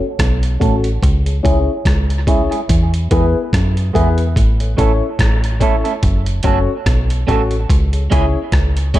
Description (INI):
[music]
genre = dub reggae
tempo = 72 BPM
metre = 4/4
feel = swing 57% on 16ths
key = F# minor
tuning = A4 = 440 Hz
[part]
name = deep dub fingered electric bass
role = bass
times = 0.2-9.0 s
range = F#1 to F#2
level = -16 LUFS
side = equal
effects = none
[part]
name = dusty soul sampler-style drum kit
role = drums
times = 0.2-9.0 s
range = hi-hat, kick drum, rim click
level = -17 LUFS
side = equal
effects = none
[part]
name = clean electric guitar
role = accompaniment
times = 0.6-9.0 s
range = G#3 to A4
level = -23 LUFS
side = right 6 dB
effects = low-pass filter, tape echo
[part]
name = warm upright piano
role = stabs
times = 0.6-9.0 s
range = B3 to C#5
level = -21 LUFS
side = left 4 dB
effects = low-pass filter, tape echo
[sound]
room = light reverb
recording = none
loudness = -13 LUFS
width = side -15 dB against mid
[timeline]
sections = 0.0-9.0 A section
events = filter sweep 0.0-9.0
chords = 0.0 F#m; 1.0 C#m; 2.7 E; 4.4 A; 6.0 F#m; 7.7 C#m